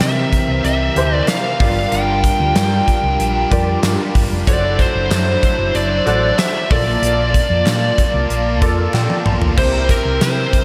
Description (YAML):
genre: 1980s-style pop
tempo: 94 BPM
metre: 4/4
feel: straight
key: C mixolydian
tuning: A4 = 440 Hz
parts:
  - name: fuzz lead guitar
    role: melody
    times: 0.0-10.6 s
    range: Bb4 to G5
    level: -22 LUFS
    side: equal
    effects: distortion, diffuse ambient delay
  - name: clear baby grand piano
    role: accompaniment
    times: 0.0-10.6 s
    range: G2 to C6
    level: -26 LUFS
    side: equal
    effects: ensemble chorus
  - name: heavy high-gain guitar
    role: accompaniment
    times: 0.0-10.6 s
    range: G2 to D4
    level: -31 LUFS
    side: equal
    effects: distortion, lush chorus
  - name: brassy analog pad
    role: sustained chords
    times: 0.0-10.6 s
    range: C3 to A5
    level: -25 LUFS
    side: equal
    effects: chorus
  - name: hollow-body short-scale fingered electric bass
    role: bass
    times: 0.0-10.5 s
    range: F1 to C3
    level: -22 LUFS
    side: equal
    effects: none
  - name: gated 80s drum kit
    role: drums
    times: 0.0-10.6 s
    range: crash cymbal, hi-hat, kick drum, snare drum, tambourine, toms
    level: -20 LUFS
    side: equal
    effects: none
  - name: group handclap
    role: percussion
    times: 0.0-9.1 s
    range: none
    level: -36 LUFS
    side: equal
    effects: none
room: wet lush hall reverb, RT60 2.5 s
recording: dreamy mix soaked in reverb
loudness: -16 LUFS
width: mono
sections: 0.0-9.6 A section; 9.6-10.6 A section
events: grand piano fill 8.6-9.6; drum fill 8.9-9.6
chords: 0.0 C7; 1.6 Gm7; 4.5 D7/F#; 6.7 Bbmaj7; 9.6 C7